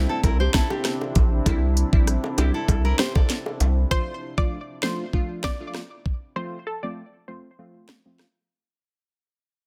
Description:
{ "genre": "dancehall", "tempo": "98 BPM", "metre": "4/4", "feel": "straight", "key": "D minor", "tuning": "A4 = 440 Hz", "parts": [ { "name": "wavetable chord stab", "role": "accompaniment", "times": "0.0-8.3 s", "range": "F3 to F4", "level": "-33 LUFS", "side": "equal", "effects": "sidechain pumping, low-pass filter" }, { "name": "deep dark ambient pad", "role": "sustained chords", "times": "0.0-3.9 s", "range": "C3 to E4", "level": "-36 LUFS", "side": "equal", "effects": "chorus, built-in reverb, sidechain pumping" }, { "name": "round analog bass", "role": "bass", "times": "0.0-3.9 s", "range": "Bb1 to C2", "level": "-23 LUFS", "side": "equal", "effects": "none" }, { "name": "nylon-string guitar", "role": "arpeggios", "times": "0.1-3.9 s", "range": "D4 to D5", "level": "-31 LUFS", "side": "equal", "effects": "low-pass filter" }, { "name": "island pop drum kit", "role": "drums", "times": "0.2-8.3 s", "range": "hi-hat, kick drum, rim click, snare drum", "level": "-24 LUFS", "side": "equal", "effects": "none" }, { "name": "bongos", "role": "percussion", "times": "0.2-3.8 s", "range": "none", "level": "-34 LUFS", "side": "equal", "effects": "none" }, { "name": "analog pluck", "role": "melody", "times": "3.9-7.4 s", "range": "A4 to D5", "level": "-34 LUFS", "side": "equal", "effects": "chorus, low-pass filter, digital delay" } ], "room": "digital ambience", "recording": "dense, heavily limited modern master", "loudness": "-23 LUFS", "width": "mono", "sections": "0.0-3.9 A section; 3.9-8.8 B section", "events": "fade-out 3.9-8.8; filter sweep 3.9-8.8; break 6.4-8.8", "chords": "0.0 Cadd9; 3.9 Dm; 6.4 F", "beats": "0.24 0.85 | 1.46 2.07 2.69 3.30 | 3.91 4.52 5.13 5.75 | 6.36 6.97 7.58 8.20" }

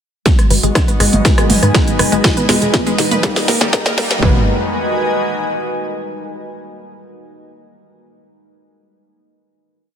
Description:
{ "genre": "melodic techno", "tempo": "121 BPM", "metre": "4/4", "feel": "straight", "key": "G# minor", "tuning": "A4 = 439 Hz", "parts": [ { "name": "wide unison lead", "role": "melody", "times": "0.3-4.4 s", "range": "G#3 to B4", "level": "-23 LUFS", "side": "equal", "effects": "cassette tape, ping-pong delay" }, { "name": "deep dark ambient pad", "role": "sustained chords", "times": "0.9-4.5 s", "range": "E3 to B4", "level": "-26 LUFS", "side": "left 1 dB", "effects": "chorus, built-in reverb, sidechain pumping" }, { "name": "wide unison pluck", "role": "arpeggios", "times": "0.3-4.5 s", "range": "G3 to B4", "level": "-22 LUFS", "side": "equal", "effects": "sidechain pumping, ping-pong delay" }, { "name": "analog synth brass", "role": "stabs", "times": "0.3-4.4 s", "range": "E3 to D#4", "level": "-25 LUFS", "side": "equal", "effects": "none" }, { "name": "techno drum kit", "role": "drums", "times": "0.3-4.3 s", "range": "kick drum, toms", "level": "-14 LUFS", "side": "equal", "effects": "none" }, { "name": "techno drum kit", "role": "drums", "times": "0.3-4.2 s", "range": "hi-hat, rim click, snare drum, toms", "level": "-17 LUFS", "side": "right 1 dB", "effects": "soft clipping on snare" }, { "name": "airy breathy pad", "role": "texture", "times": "0.5-6.2 s", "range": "E3 to A#5", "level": "-22 LUFS", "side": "equal", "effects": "chorus, sidechain pumping" }, { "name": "tight sequencer bass", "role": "bass", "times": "0.5-4.5 s", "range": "D#1 to G#2", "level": "-19 LUFS", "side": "equal", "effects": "tube saturation, sidechain pumping" } ], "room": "moderate lush hall reverb, RT60 2.0 s", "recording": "dense, heavily limited modern master, high-pass filter", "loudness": "-12 LUFS", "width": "side -8 dB against mid", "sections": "0.3-4.2 build; 4.2-6.2 final chord", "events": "build-up 0.3-4.2; drum fill 0.3-4.2; filter sweep on synth arpeggio sound 0.3-4.2; filter sweep on analog synth lead 0.3-4.2; filter sweep 0.3-4.2", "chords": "0.3 G#m7; 2.2 Emaj7; 3.2 D#; 4.2 G#m7", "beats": "| 0.26 0.75 1.25 1.75 | 2.24 2.74 3.23 3.73 | 4.22 4.72 5.22 5.71" }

